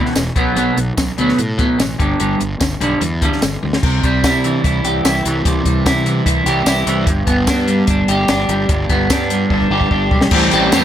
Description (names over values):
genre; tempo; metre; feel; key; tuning
indie rock; 148 BPM; 4/4; straight; unclear; A4 = 439 Hz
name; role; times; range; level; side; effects
electric guitar at the edge of break-up; riff; 0.0-10.8 s; E2 to G4; -16 LUFS; right 1 dB; double-tracked left and right
compact cocktail drum kit; drums; 0.1-10.8 s; crash cymbal, hi-hat, kick drum, snare drum, tambourine, toms; -18 LUFS; equal; none
fuzz fingered electric bass; bass; 0.2-10.8 s; E1 to C3; -20 LUFS; equal; overdrive
room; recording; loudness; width
light reverb, small room ambience; none; -13 LUFS; side -10 dB against mid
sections
0.0-3.8 A section; 3.8-10.3 B section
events
drum fill 3.6, 9.5-10.3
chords
0.4 B5; 2.0 G5; 3.8 C; 7.1 G; 10.3 Am7